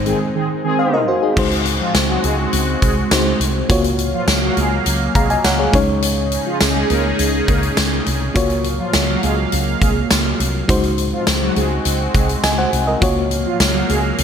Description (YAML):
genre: 1980s-style pop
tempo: 103 BPM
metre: 4/4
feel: straight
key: unclear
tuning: A4 = 442 Hz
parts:
  - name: FM electric piano with auto-pan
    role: accompaniment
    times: 0.0-14.2 s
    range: Ab3 to Bb5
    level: -20 LUFS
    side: left 2 dB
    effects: none
  - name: phased analog pad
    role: sustained chords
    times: 0.0-14.2 s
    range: Db3 to F5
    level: -23 LUFS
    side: right 3 dB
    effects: phaser, chorus
  - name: woody fretless electric bass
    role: bass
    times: 0.0-14.2 s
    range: Ab1 to Db2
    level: -21 LUFS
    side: equal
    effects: none
  - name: mellow synth brass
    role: stabs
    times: 0.1-14.0 s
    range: Eb3 to Bb4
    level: -24 LUFS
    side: right 1 dB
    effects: chorus, ping-pong delay
  - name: big rock drum kit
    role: drums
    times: 0.1-14.2 s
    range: crash cymbal, hi-hat, kick drum, snare drum, tambourine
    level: -19 LUFS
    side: equal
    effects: none
  - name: tambourine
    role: percussion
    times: 1.9-13.7 s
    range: none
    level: -29 LUFS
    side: right 9 dB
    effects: none
room: moderate plate reverb, RT60 2.4 s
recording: bright 1980s-style digital production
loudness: -14 LUFS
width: side -7 dB against mid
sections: 0.0-1.4 A section; 1.4-14.2 B section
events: none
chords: 0.0 Ab; 1.4 Ab7/Db; 3.7 Gbmaj7/Db; 5.7 Dbsus2; 8.4 Gbmaj7/Db; 10.7 Ab7/Db; 13.0 Gbmaj7/Db